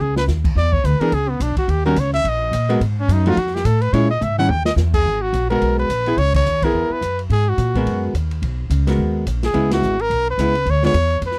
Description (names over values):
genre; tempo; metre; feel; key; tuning
jazz, small-group swing and bop; 214 BPM; 4/4; swing 59% on 8ths; G# minor; A4 = 442 Hz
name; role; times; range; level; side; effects
bright trumpet; melody; 0.0-11.4 s; B3 to G5; -23 LUFS; equal; none
upright bass; bass; 0.0-11.4 s; G#1 to A#2; -22 LUFS; equal; none
open jazz drum kit; drums; 0.2-11.4 s; crash cymbal, hi-hat, kick drum, ride cymbal, snare drum, toms; -28 LUFS; equal; none
archtop guitar, miked and amplified; accompaniment; 1.0-10.9 s; D3 to A#4; -22 LUFS; equal; none
room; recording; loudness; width
little or no reverb; dry, close 1970s-style studio recording; -18 LUFS; mono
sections
0.0-5.1 A section; 5.1-11.4 B section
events
trumpet solo 0.0-5.1; drum fill 0.0, 4.2-4.8; band accent 6.3, 9.7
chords
0.0 G#5; 0.6 E7(no3); 1.7 D#m7; 2.8 G#5; 3.4 F; 3.9 A#m7b5; 4.5 D#; 5.1 G#m9; 6.2 C#m7; 7.3 G#m9; 9.5 C#m7; 10.7 Ddim7